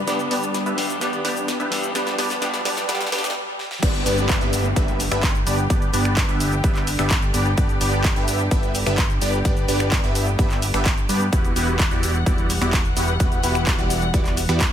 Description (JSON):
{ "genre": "EDM, festival progressive house", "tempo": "128 BPM", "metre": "4/4", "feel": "straight", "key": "G major", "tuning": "A4 = 440 Hz", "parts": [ { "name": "electric guitar at the edge of break-up", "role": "accompaniment", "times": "0.0-3.3 s", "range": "G2 to G4", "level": "-28 LUFS", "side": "left 2 dB", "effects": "sidechain pumping, digital delay" }, { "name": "muted studio string section", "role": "sustained chords", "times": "0.0-14.7 s", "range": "D3 to F#5", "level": "-29 LUFS", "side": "equal", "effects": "sidechain pumping" }, { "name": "riser, swell and downlifter", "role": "sound effects", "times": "0.0-7.6 s", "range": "none", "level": "-33 LUFS", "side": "equal", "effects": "none" }, { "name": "supersaw stab", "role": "riff", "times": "0.1-14.7 s", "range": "B3 to E5", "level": "-24 LUFS", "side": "equal", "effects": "phaser, sidechain pumping, digital delay" }, { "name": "big-room dance drum kit", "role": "drums", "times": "0.1-14.7 s", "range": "crash cymbal, finger snaps, handclaps, hi-hat, shaker, snare drum", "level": "-26 LUFS", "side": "equal", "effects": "high-pass filter on hats, studio reverb, high-pass filter on toms, high-pass filter on snare, high-pass filter on perc, high-pass filter on cymbals" }, { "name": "fat analog bass", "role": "bass", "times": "3.8-14.7 s", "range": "E1 to G2", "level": "-24 LUFS", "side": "equal", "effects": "sidechain pumping" }, { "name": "electronic kick drum", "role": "drums", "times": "3.8-14.7 s", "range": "none", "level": "-21 LUFS", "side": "equal", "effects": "overdrive, studio reverb" } ], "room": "light reverb, digital ambience", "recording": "high-pass filter", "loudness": "-18 LUFS", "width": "side -10 dB against mid", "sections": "0.0-3.8 A section; 3.8-14.7 B section", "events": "build-up 0.0-3.8; drum fill 0.0-3.4, 3.6; riser 0.0-3.4; filter sweep on supersaw synth 0.0-3.8; filter sweep 0.0-3.8; swell 2.9-3.8; stop 3.4-3.8; drop 3.8-14.7", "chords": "0.0 G; 11.3 Emadd9", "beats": "| 0.07 0.54 1.01 1.48 | 1.95 2.42 2.89 3.36 | 3.83 4.29 4.76 5.23 | 5.70 6.17 6.64 7.11 | 7.58 8.04 8.51 8.98 | 9.45 9.92 10.39 10.86 | 11.32 11.79 12.26 12.73 | 13.20 13.67 14.14 14.61" }